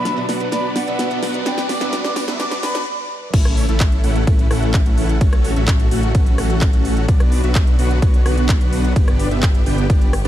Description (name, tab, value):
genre	EDM, festival progressive house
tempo	128 BPM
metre	4/4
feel	straight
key	unclear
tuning	A4 = 442 Hz
part	breathy concert flute	melody	0.0-2.9 s	F#5 to D6	-26 LUFS	equal	dub echo
part	picked swing-style acoustic guitar	accompaniment	0.0-2.8 s	B2 to B4	-29 LUFS	right 4 dB	sidechain pumping, dub echo
part	rich studio string section	sustained chords	0.0-10.3 s	C#3 to D5	-30 LUFS	left 2 dB	sidechain pumping
part	dense compressed supersaw	riff	0.0-10.3 s	A3 to G5	-23 LUFS	equal	cassette tape, sidechain pumping, low-pass filter, dub echo
part	riser	sound effects	0.1-2.9 s	none	-32 LUFS	equal	none
part	pop drum kit	drums	0.1-10.3 s	crash cymbal, handclaps, hi-hat, ride cymbal, rim click, snare drum	-26 LUFS	equal	none
part	wide detuned saw bass	bass	3.3-10.3 s	G1 to B1	-19 LUFS	equal	chorus, sidechain pumping
part	electronic kick drum	drums	3.3-10.0 s	none	-15 LUFS	equal	overdrive
room	light reverb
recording	dark, warm production, high-pass filter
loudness	-14 LUFS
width	side -12 dB against mid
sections	0.0-3.3 A section; 3.3-10.3 B section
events	build-up 0.0-3.3; drum fill 0.0-2.9; filter sweep 0.0-3.3; riser 0.1-2.9; break 2.9-3.3; drop 3.3-10.3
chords	0.0 Bm; 1.5 G; 3.3 A; 7.1 Bm; 9.0 G